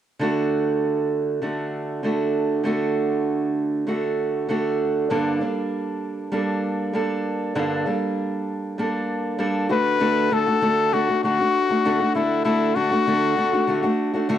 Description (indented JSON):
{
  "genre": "pop",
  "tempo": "98 BPM",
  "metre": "4/4",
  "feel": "straight",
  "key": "D major",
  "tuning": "A4 = 441 Hz",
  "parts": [
    { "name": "fingerpicked steel-string acoustic guitar", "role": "accompaniment", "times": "0.2-14.4 s", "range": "G2 to A4", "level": "-22 LUFS", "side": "right 2 dB", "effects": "cassette tape" },
    { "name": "clear trumpet", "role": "melody", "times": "9.7-14.0 s", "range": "E4 to B4", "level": "-20 LUFS", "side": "left 6 dB", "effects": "cassette tape" }
  ],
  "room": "moderate studio reverb, RT60 0.7 s",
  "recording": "home recording on cassette",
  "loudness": "-20 LUFS",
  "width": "side -10 dB against mid",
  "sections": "0.2-10.0 A section; 10.0-14.4 B section",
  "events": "none",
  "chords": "0.2 D; 5.1 Gmadd9; 9.7 D",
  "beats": "| 0.20 0.81 1.42 2.04 | 2.65 3.26 3.87 4.49 | 5.10 5.71 6.32 6.94 | 7.55 8.16 8.77 9.39 | 10.00 10.61 11.22 11.84 | 12.45 13.06 13.68 14.29"
}